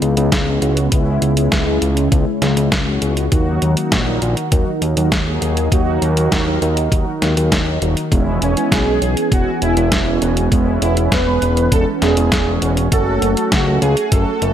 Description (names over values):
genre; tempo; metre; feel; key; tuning
synthwave; 100 BPM; 4/4; straight; unclear; A4 = 444 Hz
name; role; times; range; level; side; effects
phased analog pad; sustained chords; 0.0-14.5 s; C#3 to G#5; -22 LUFS; equal; phaser, chorus, sidechain pumping
fat analog bass; bass; 0.0-14.5 s; D#1 to D#2; -18 LUFS; equal; sidechain pumping
detuned 8-bit digital drum machine; drums; 0.0-14.5 s; hi-hat, snare drum; -21 LUFS; equal; none
mellow synth brass; stabs; 0.2-14.3 s; F#3 to A#4; -23 LUFS; right 1 dB; chorus, vintage 12-bit sampler grit, ping-pong delay
electronic kick drum; drums; 0.3-14.2 s; none; -18 LUFS; equal; none
soft supersaw; melody; 8.4-14.5 s; C#4 to B4; -20 LUFS; right 2 dB; tape echo
room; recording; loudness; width
light reverb; none; -14 LUFS; side -10 dB against mid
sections
0.0-14.5 A section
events
none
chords
0.0 C#m7; 3.3 D#m; 8.1 E6; 12.9 F#m